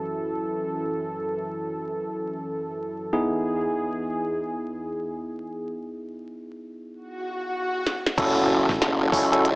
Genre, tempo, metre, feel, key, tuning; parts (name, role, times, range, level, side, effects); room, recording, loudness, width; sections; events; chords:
glitch hop; free time; F# dorian; A4 = 439 Hz
warm analog pad; sustained chords; 0.0-9.6 s; E2 to A4; -30 LUFS; equal; chorus, sidechain pumping
barky tine electric piano; stabs; 0.0-9.5 s; B3 to A4; -27 LUFS; equal; sidechain pumping, dub echo
swell and impact; sound effects; 7.1-9.6 s; -31 LUFS; equal
glitchy drum kit; drums; 7.9-9.6 s; crash cymbal, hi-hat, snare drum; -27 LUFS; equal; low-pass filter on hats, low-pass filter on snare, low-pass filter on cymbals, low-pass filter on room
formant-sweep wobble bass; bass; 8.2-9.6 s; F#1 to C#2; -24 LUFS; equal; chorus
electronic kick drum; drums; 8.2-9.3 s; -32 LUFS; equal
slap-like FM bass; bass; 8.7-8.8 s; A1; -28 LUFS; equal
light reverb; vinyl crackle, small speaker sound; -24 LUFS; side -26 dB against mid
0.0-8.2 A section; 8.2-9.6 B section
break 5.7-8.2; swell 7.1-8.2; drum fill 7.9-8.2; drop 8.2-9.6; impact 8.2-9.6
0.0 F#m7; 3.1 Emaj7; 8.2 F#m7